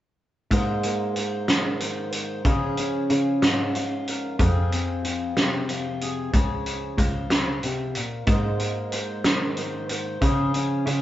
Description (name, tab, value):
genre	indie folk with a building arrangement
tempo	62 BPM (dotted quarters)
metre	6/8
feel	straight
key	unclear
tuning	A4 = 440 Hz
part	fingerpicked steel-string acoustic guitar	accompaniment	0.5-11.0 s	F2 to C5	-26 LUFS	equal	none
part	warm cello	bass	0.5-11.0 s	Db2 to Db3	-27 LUFS	equal	none
part	loose indie drum kit	drums	0.5-11.0 s	hi-hat, kick drum, snare drum	-24 LUFS	equal	none
room	moderate small room ambience, RT60 0.5 s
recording	band playing live in one room, nothing above 7.8 kHz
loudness	-22 LUFS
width	side -13 dB against mid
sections	0.5-11.0 A section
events	none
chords	0.5 Abadd9; 2.5 Db; 4.4 Fm; 6.3 Db; 8.3 Abadd9; 10.2 Db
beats	| 0.51 1.48 | 2.45 3.42 | 4.39 5.36 | 6.33 7.30 | 8.28 9.25 | 10.22